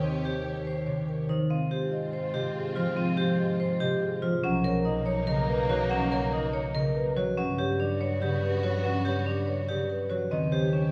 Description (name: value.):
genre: classical, minimalist pattern music.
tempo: 286 BPM (eighths).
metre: 7/8.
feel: straight.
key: unclear.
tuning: A4 = 440 Hz.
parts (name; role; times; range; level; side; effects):
marimba with medium mallets; melody; 0.0-10.9 s; Ab4 to F#5; -34 LUFS; equal; none.
concert harp; accompaniment; 0.0-10.9 s; C3 to F#3; -33 LUFS; equal; none.
warm symphonic violin section; sustained chords; 0.0-10.9 s; A#3 to Db5; -40 LUFS; equal; none.
vibraphone with hard mallets; arpeggios; 0.0-10.9 s; C4 to Db5; -34 LUFS; equal; none.
warm double bass; bass; 0.0-10.9 s; B1 to Ab2; -36 LUFS; equal; none.
room: wet recital hall reverb, RT60 1.7 s.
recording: studio reverb.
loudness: -28 LUFS.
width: mono.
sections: 0.0-10.9 A section.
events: none.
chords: 0.0 Eb7; 1.5 Ab6; 4.4 Bmaj7; 7.4 Gmaj7; 10.3 Eb7.